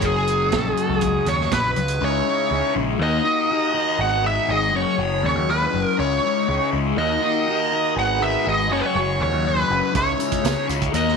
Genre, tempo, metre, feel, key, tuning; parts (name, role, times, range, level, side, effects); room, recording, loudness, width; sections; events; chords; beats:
psychedelic rock; 121 BPM; 4/4; straight; A4 = 441 Hz
dark smooth lead guitar; melody; 0.0-11.2 s; G#4 to F#5; -22 LUFS; right 1 dB; wah, overdrive, slapback echo
hand-pumped harmonium; sustained chords; 0.0-11.2 s; F#3 to A#4; -28 LUFS; right 16 dB
fuzz guitar; riff; 0.0-11.2 s; F#2 to D#4; -24 LUFS; left 13 dB; distortion, phaser
growling picked electric bass; bass; 0.0-11.1 s; F#1 to D#2; -25 LUFS; right 1 dB; overdrive
vintage drum kit; drums; 0.0-2.0, 9.9-11.1 s; hi-hat, kick drum, snare drum; -27 LUFS; right 6 dB
tambourine; percussion; 10.2-11.1 s; -38 LUFS; left 16 dB
moderate spring reverb, RT60 1.2 s, studio ambience; 1960s-style stereo with parts hard left and right; -18 LUFS; side -5 dB against mid
0.0-2.0 A section; 2.0-11.2 B section
0.0 F#add9; 2.0 C#madd9; 3.0 D#m; 4.0 G#m7; 4.7 F#sus2; 6.0 C#madd9; 7.0 D#m; 8.0 G#m7; 8.7 F#sus2; 9.9 C#madd9
| 0.03 0.52 1.02 1.52 | 2.01 2.51 3.01 3.50 | 4.00 4.50 4.99 5.49 | 5.99 6.48 6.98 7.47 | 7.97 8.46 8.96 9.45 | 9.95 10.44 10.94